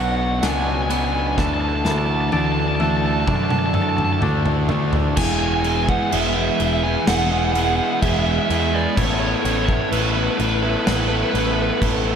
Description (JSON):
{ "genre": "post-rock", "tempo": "63 BPM", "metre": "4/4", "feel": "straight", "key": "unclear", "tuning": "A4 = 439 Hz", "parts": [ { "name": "overdriven electric guitar", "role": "melody", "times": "0.0-11.8 s", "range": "B4 to A5", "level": "-24 LUFS", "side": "right 1 dB", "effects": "tape echo" }, { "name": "chorused pulse-width pad", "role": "sustained chords", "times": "0.0-12.2 s", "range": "D4 to D6", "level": "-34 LUFS", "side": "right 2 dB", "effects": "none" }, { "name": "twangy electric guitar", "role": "arpeggios", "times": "0.0-5.2 s", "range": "D3 to D5", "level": "-30 LUFS", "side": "left 2 dB", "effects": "slapback echo, tape echo" }, { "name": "fuzz guitar", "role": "riff", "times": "0.0-12.2 s", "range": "B2 to A4", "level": "-25 LUFS", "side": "right 9 dB", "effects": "distortion, slapback echo" }, { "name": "thick fuzz guitar", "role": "riff", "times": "0.0-12.2 s", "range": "B2 to A4", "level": "-25 LUFS", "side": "left 10 dB", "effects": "distortion" }, { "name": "growling picked electric bass", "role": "bass", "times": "0.0-12.2 s", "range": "E1 to F#2", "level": "-23 LUFS", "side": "equal", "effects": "overdrive" }, { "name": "loose indie drum kit", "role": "drums", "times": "0.4-12.0 s", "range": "crash cymbal, kick drum, ride cymbal, snare drum, toms", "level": "-24 LUFS", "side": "right 1 dB", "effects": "none" } ], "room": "moderate lush hall reverb, RT60 2.1 s", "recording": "big arena sound", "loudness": "-17 LUFS", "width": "side -7 dB against mid", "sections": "0.0-5.2 A section; 5.2-12.2 B section", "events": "build-up 0.0-5.2; drum fill 1.4-5.2", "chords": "0.0 Bmadd9; 1.4 Dsus2; 5.2 E; 9.0 Asus2" }